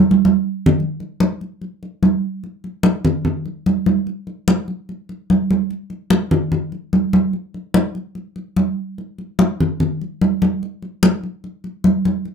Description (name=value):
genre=jazz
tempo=147 BPM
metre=4/4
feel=straight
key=none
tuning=none
part: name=congas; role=percussion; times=0.1-12.3 s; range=none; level=-16 LUFS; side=equal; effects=none
room=moderate studio ambience, RT60 0.4 s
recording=minimal, uncompressed stereo recording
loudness=-17 LUFS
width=side -6 dB against mid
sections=0.8-12.3 A section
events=drum fill 0.0-0.8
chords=none